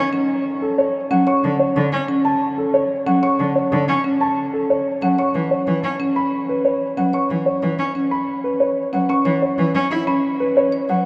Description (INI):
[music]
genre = classical, minimalist pattern music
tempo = 184 BPM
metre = 6/4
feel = straight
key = unclear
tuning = A4 = 438 Hz
[part]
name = rich cello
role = accompaniment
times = 0.0-11.0 s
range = D3 to E4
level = -26 LUFS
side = equal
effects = none
[part]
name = marimba with medium mallets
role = arpeggios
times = 0.1-10.9 s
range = C#4 to C#5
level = -24 LUFS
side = equal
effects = none
[part]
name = dark grand piano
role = melody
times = 0.6-11.1 s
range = A4 to C#6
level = -23 LUFS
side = equal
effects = none
[sound]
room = wet cathedral reverb, RT60 5.4 s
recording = in a vast, echoing space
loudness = -19 LUFS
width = mono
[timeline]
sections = 0.0-9.1 A section; 9.1-11.1 B section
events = none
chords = 0.0 N.C.; 1.3 D5; 5.2 E5